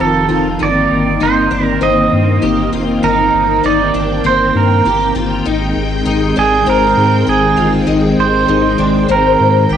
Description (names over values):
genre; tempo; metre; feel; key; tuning
dream pop; 99 BPM; 4/4; straight; unclear; A4 = 440 Hz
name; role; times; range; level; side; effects
pedal steel guitar; melody; 0.0-9.8 s; Ab4 to Eb5; -14 LUFS; right 6 dB; cassette tape, analog delay
string machine, full ensemble; sustained chords; 0.0-9.8 s; Eb3 to G5; -15 LUFS; left 1 dB; ensemble chorus
picked twelve-string acoustic guitar; arpeggios; 0.0-9.8 s; C4 to G5; -19 LUFS; left 8 dB; ensemble chorus, analog delay
warm sub bass; bass; 0.0-9.8 s; F1 to Ab2; -19 LUFS; left 1 dB; none
room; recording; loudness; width
moderate spring reverb, RT60 2.4 s; home recording on cassette; -10 LUFS; side -9 dB against mid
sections
0.0-9.8 A section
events
none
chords
0.0 F7; 0.6 Cm7; 5.5 Abmaj7